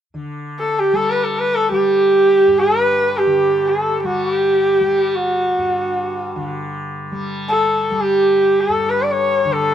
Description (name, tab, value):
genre	indian classical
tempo	free time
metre	none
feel	none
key	G raga yaman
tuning	A4 = 439 Hz
part	tanpura	drone	0.1-9.7 s	G2 to G3	-26 LUFS	left 1 dB	none
part	rich sarangi	melody	0.6-9.7 s	F#4 to D5	-14 LUFS	equal	none
room	light reverb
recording	minimal, uncompressed stereo recording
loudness	-14 LUFS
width	side -10 dB against mid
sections	0.2-9.7 A section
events	none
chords	none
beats	free time